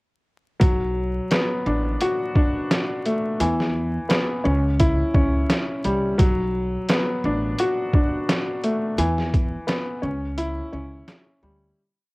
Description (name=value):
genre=hip hop, boom-bap hip-hop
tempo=86 BPM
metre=4/4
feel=swing 55% on 16ths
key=B minor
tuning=A4 = 440 Hz
part: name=dark grand piano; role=accompaniment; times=0.6-11.8 s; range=E3 to F#4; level=-23 LUFS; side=left 1 dB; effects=high-pass filter, low-pass filter, cassette tape
part: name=upright bass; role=bass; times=0.6-11.7 s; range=A1 to E2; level=-26 LUFS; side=equal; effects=none
part: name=trip hop sampler-style drum kit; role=drums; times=0.6-11.3 s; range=hi-hat, kick drum, snare drum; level=-21 LUFS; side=equal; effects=cassette tape
room=studio ambience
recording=home recording on cassette, vinyl crackle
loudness=-20 LUFS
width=side -24 dB against mid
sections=0.6-11.8 verse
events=fade-out 9.0-11.8; break 10.4-11.8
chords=0.6 Bm7; 3.4 E5; 4.5 C#dim; 6.2 Bm7; 9.0 E5; 10.0 C#dim